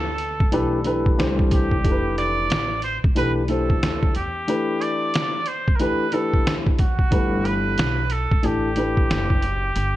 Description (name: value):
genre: hip hop, jazz-hop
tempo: 91 BPM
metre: 4/4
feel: swing 62% on 16ths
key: unclear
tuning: A4 = 440 Hz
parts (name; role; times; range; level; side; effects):
- trumpet with straight mute; melody; 0.0-10.0 s; F#4 to D5; -26 LUFS; right 2 dB; none
- dark upright piano; accompaniment; 0.0-9.4 s; E3 to C5; -24 LUFS; left 2 dB; none
- upright bass; bass; 0.0-10.0 s; F1 to E2; -26 LUFS; equal; none
- trip hop sampler-style drum kit; drums; 0.2-9.9 s; hi-hat, kick drum, snare drum; -21 LUFS; equal; vintage 12-bit sampler grit
room: light reverb, small room ambience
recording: dark, warm production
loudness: -19 LUFS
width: side -15 dB against mid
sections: 0.0-10.0 A section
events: none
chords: 0.0 Gadd9; 1.2 Cadd9; 1.8 Fmaj9#11 (rootless); 7.1 Gmaj9